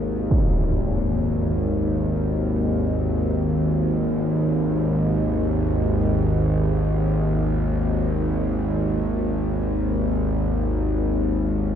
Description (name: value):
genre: dark ambient drone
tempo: free time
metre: none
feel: none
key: unclear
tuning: A4 = 439 Hz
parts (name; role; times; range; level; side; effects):
- bowed-like drone; drone; 0.0-11.8 s; G#1 to D#2; -20 LUFS; equal; built-in reverb
- impact; percussion; 0.3-0.5 s; none; -25 LUFS; equal; low-pass filter on sfx
room: wet huge ambient reverb, RT60 8.2 s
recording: dark, warm production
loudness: -20 LUFS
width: side -9 dB against mid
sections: 0.0-11.8 A section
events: none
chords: 0.0 G#5